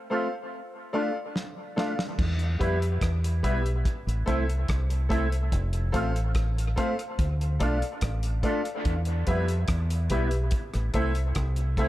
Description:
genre	dub reggae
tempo	72 BPM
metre	4/4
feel	straight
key	A minor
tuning	A4 = 441 Hz
part	electric guitar with an envelope filter	accompaniment	0.1-11.9 s	G3 to F4	-32 LUFS	right 2 dB	ensemble chorus, dub echo
part	clear upright piano	stabs	0.1-11.9 s	G4 to F5	-34 LUFS	left 3 dB	dub echo
part	cloth-damped thuddy drum kit	drums	1.4-11.9 s	crash cymbal, hi-hat, kick drum, rim click, snare drum	-30 LUFS	equal	none
part	deep dub fingered electric bass	bass	2.2-11.9 s	F1 to F2	-26 LUFS	equal	none
room	light reverb, small room ambience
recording	echo-heavy mix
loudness	-24 LUFS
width	side -15 dB against mid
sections	0.0-2.2 A section; 2.2-11.9 B section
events	break 0.0-2.2; drum fill 1.4-2.2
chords	0.0 F; 0.5 Dm; 2.2 Em; 3.9 Am; 5.5 F; 7.2 Dm; 8.9 Em; 10.5 Am

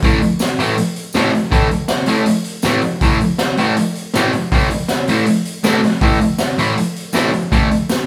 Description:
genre	garage rock duo or trio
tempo	160 BPM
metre	4/4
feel	straight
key	unclear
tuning	A4 = 439 Hz
part	fuzz guitar	riff	0.0-7.7 s	A2 to A3	-18 LUFS	equal	distortion
part	raw garage drum kit	drums	0.0-8.0 s	hi-hat, kick drum, snare drum	-20 LUFS	equal	none
part	tambourine	percussion	0.4-8.0 s	none	-34 LUFS	equal	none
room	light reverb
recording	band playing live in one room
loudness	-16 LUFS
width	mono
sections	0.0-8.1 A section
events	none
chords	0.0 A5

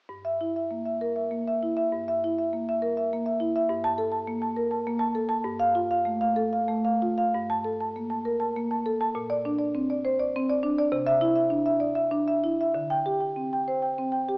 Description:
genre	classical, contemporary piece for solo marimba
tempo	60-69 BPM (dotted quarters)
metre	6/8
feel	rubato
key	G dorian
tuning	A4 = 441 Hz
part	marimba with medium mallets	solo	0.1-14.4 s	G2 to A5	-24 LUFS	equal	none
room	wet recital hall reverb, RT60 1.3 s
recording	AM radio sound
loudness	-24 LUFS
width	side -28 dB against mid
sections	0.1-7.3 A section; 7.3-14.4 B section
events	none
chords	0.1 Gm6; 3.7 Gmadd9; 5.4 Fadd9/G; 7.3 Gmadd9; 9.2 Bbadd9; 10.9 Cadd9; 12.7 D7sus4

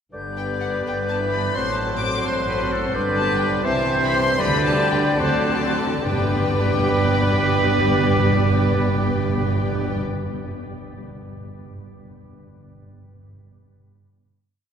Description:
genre	quick classical-period movement for symphony orchestra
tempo	66-87 BPM (dotted quarters)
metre	6/8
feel	rubato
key	G major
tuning	A4 = 441 Hz
part	clear clarinet	second line	0.1-10.0 s	G4 to D5	-31 LUFS	left 2 dB	none
part	clear oboe	second line	0.1-10.0 s	A4 to D5	-30 LUFS	right 2 dB	none
part	silver concert flute	second line	0.1-10.0 s	D6 to G6	-30 LUFS	left 2 dB	none
part	warm bassoon	accompaniment	0.1-10.0 s	D3 to G3	-31 LUFS	equal	none
part	mellow French horn section	sustained chords	0.1-10.0 s	F#3 to E4	-30 LUFS	left 1 dB	none
part	clear trumpet	stabs	0.1-10.0 s	B4 to D5	-28 LUFS	right 3 dB	none
part	rich chamber double bass section	bass	0.1-10.0 s	G1 to D2	-28 LUFS	right 2 dB	none
part	warm studio cello section	bass	0.1-10.0 s	G2 to D3	-28 LUFS	right 2 dB	none
part	warm chamber violin section	melody	0.4-10.0 s	F#5 to D6	-29 LUFS	left 4 dB	none
part	dark chamber violin section	second line	0.4-10.0 s	G4 to E5	-30 LUFS	left 3 dB	none
part	dark chamber viola section	accompaniment	0.4-10.0 s	G3 to G4	-29 LUFS	equal	none
part	timpani	percussion	4.4-10.0 s	G2 to D3	-27 LUFS	left 1 dB	none
room	wet cathedral reverb, RT60 6.0 s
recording	recorded in a church or concert hall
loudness	-18 LUFS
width	side -7 dB against mid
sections	0.1-6.1 A section; 6.1-9.6 final chord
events	slowing down 2.2-6.1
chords	0.1 G; 1.5 F#dim/A; 2.9 G; 3.6 C; 4.4 G/D; 5.2 D7; 6.1 G

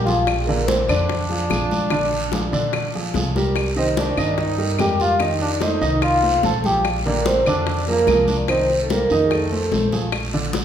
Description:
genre	Afro-Cuban jazz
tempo	146 BPM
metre	4/4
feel	straight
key	Bb major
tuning	A4 = 440 Hz
part	vibraphone with soft mallets	melody	0.0-9.9 s	Ab4 to A5	-21 LUFS	equal	none
part	bright trombone	second line	0.0-9.9 s	Ab3 to A4	-27 LUFS	right 3 dB	none
part	warm baby grand piano	accompaniment	0.0-10.6 s	D3 to Eb5	-24 LUFS	right 1 dB	none
part	upright bass	bass	0.0-10.6 s	Bb1 to Bb2	-25 LUFS	equal	none
part	congas	percussion	0.1-10.6 s	none	-29 LUFS	left 3 dB	none
part	guiro	percussion	0.1-10.6 s	none	-32 LUFS	right 4 dB	none
part	bongos	percussion	0.3-10.6 s	none	-30 LUFS	left 6 dB	none
part	claves	percussion	0.3-10.3 s	none	-32 LUFS	left 5 dB	none
room	wet recital hall reverb, RT60 1.4 s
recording	recorded in a church or concert hall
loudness	-17 LUFS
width	side -9 dB against mid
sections	0.0-10.1 A section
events	none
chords	0.3 Bb9; 3.6 Cm7; 5.2 F7; 6.8 Bb9; 8.5 Cm7; 9.3 F7; 10.1 Bb

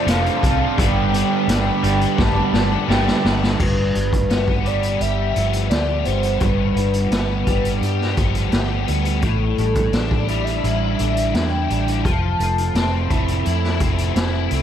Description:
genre	rock, shoegaze and dream pop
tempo	85 BPM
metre	4/4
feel	straight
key	G mixolydian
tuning	A4 = 440 Hz
part	warm velvety synth lead	melody	0.0-14.1 s	A4 to A5	-25 LUFS	left 1 dB	chorus, slapback echo
part	hand-pumped harmonium	sustained chords	0.0-3.6 s	F4 to B5	-30 LUFS	right 4 dB	none
part	biting overdriven guitar	riff	0.0-14.6 s	G2 to B4	-26 LUFS	left 13 dB	ensemble chorus
part	crunchy overdriven guitar	riff	0.0-3.6 s	F2 to G3	-24 LUFS	left 1 dB	none
part	electric guitar through a small old amp	riff	0.0-14.6 s	G2 to A4	-24 LUFS	right 9 dB	reverse reverb
part	vintage muted fingered electric bass	bass	0.1-14.6 s	F1 to G2	-22 LUFS	equal	none
part	raw garage drum kit	drums	0.1-14.6 s	crash cymbal, hi-hat, kick drum, snare drum	-22 LUFS	equal	none
room	light reverb, studio ambience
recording	none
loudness	-17 LUFS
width	side -9 dB against mid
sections	0.0-3.6 A section; 3.6-14.6 B section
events	drum fill 2.2-3.6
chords	0.0 F6; 0.8 G; 3.6 G7; 9.2 A7sus4; 12.0 Fmaj7

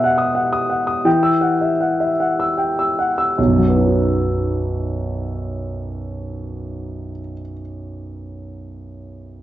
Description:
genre	neoclassical minimalist piano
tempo	48-62 BPM (dotted quarters)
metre	6/8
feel	rubato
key	B major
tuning	A4 = 440 Hz
part	dark grand piano	solo	0.0-9.4 s	B1 to E6	-18 LUFS	equal	none
room	moderate large studio reverb, RT60 0.9 s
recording	band playing live in one room, nothing above 7.8 kHz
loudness	-16 LUFS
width	side -13 dB against mid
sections	0.0-3.4 A section; 3.4-8.1 B section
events	slowing down 0.0-3.4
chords	0.0 B; 1.0 Emadd9; 3.4 B

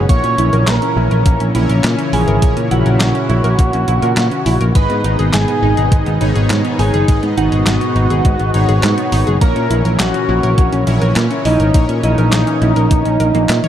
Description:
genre	synthwave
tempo	103 BPM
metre	4/4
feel	straight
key	unclear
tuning	A4 = 441 Hz
part	chorused pulse-width pad	sustained chords	0.0-13.7 s	G#2 to E4	-20 LUFS	left 1 dB	sidechain pumping, shimmer reverb
part	analog pluck	arpeggios	0.0-13.7 s	G#3 to E5	-23 LUFS	right 2 dB	chorus, digital delay, shimmer reverb
part	analog synth brass	stabs	0.0-13.2 s	E3 to D#5	-24 LUFS	left 2 dB	chorus, digital delay, shimmer reverb
part	picked electric bass	bass	0.0-13.6 s	F#1 to A#2	-15 LUFS	equal	sidechain pumping
part	expressive synth lead	melody	0.1-13.7 s	D#4 to C#5	-19 LUFS	right 1 dB	lush chorus, ping-pong delay, shimmer reverb
part	soft synth bell	second line	0.1-13.7 s	D#5 to C#6	-28 LUFS	right 2 dB	none
part	clean 12-bit digital drum machine	drums	0.1-13.7 s	handclaps, hi-hat, snare drum, toms	-22 LUFS	equal	none
part	electronic kick drum	drums	0.1-13.0 s	none	-13 LUFS	equal	none
room	light reverb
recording	dark, warm production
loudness	-11 LUFS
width	side -10 dB against mid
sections	0.0-13.7 A section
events	none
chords	0.1 A#dim; 4.8 G#m; 9.4 A#dim

